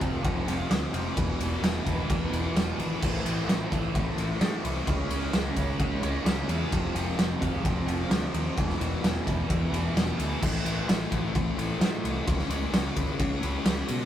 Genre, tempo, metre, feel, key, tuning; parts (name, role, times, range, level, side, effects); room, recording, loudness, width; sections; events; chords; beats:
quiet-loud alternative rock; 130 BPM; 4/4; straight; A4 = 441 Hz
string machine, full ensemble; sustained chords; 0.0-14.1 s; G#3 to C#5; -40 LUFS; right 1 dB
cranked stack guitar; riff; 0.0-10.4 s; E2 to C#4; -35 LUFS; right 6 dB; overdrive, phaser
fuzz guitar; riff; 0.0-14.1 s; E2 to C#4; -37 LUFS; equal
sludgy distorted guitar; riff; 0.0-14.1 s; E2 to C#4; -36 LUFS; left 4 dB; overdrive
growling picked electric bass; bass; 0.0-14.0 s; E1 to C#3; -32 LUFS; equal; overdrive
oversized low-tuned drum kit; drums; 0.0-14.0 s; crash cymbal, kick drum, ride cymbal, snare drum; -28 LUFS; equal
light reverb; rough rehearsal-room recording; -25 LUFS; side -11 dB against mid
0.0-10.4 A section; 10.4-14.1 A section
0.0 Fm; 1.2 E; 3.0 Am; 4.9 C#m; 6.7 Fm; 8.6 E; 10.4 Am; 12.3 C#m
0.24 0.70 | 1.17 1.63 2.09 2.55 | 3.01 3.48 3.94 4.40 | 4.87 5.33 5.79 6.25 | 6.72 7.18 7.64 8.11 | 8.57 9.03 9.49 9.96 | 10.42 10.88 11.34 11.81 | 12.27 12.73 13.19 13.65